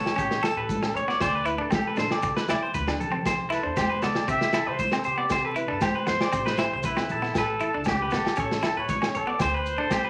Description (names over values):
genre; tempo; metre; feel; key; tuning
highlife guitar band; 117 BPM; 4/4; straight; C major; A4 = 440 Hz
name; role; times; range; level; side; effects
warm trumpet; melody; 0.0-10.1 s; E4 to E5; -32 LUFS; equal; none
clean electric guitar; accompaniment; 0.0-10.1 s; B3 to A4; -34 LUFS; equal; none
semi-hollow electric guitar; arpeggios; 0.0-10.1 s; G4 to D5; -31 LUFS; equal; none
upright bass; bass; 0.0-10.0 s; A1 to C3; -39 LUFS; equal; none
crunchy breakbeat drum kit; drums; 0.1-10.0 s; kick drum, snare drum; -32 LUFS; equal; none
agogo bells; percussion; 0.1-10.0 s; none; -38 LUFS; equal; none
congas; percussion; 0.2-10.0 s; none; -37 LUFS; equal; none
maracas; percussion; 0.2-10.0 s; none; -50 LUFS; equal; none
room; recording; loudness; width
moderate large studio reverb, RT60 0.8 s; vinyl crackle; -26 LUFS; mono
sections
0.0-10.1 A section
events
drum fill 2.7-3.3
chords
0.0 A; 1.2 D5; 3.3 Cadd9; 7.3 A; 9.4 D5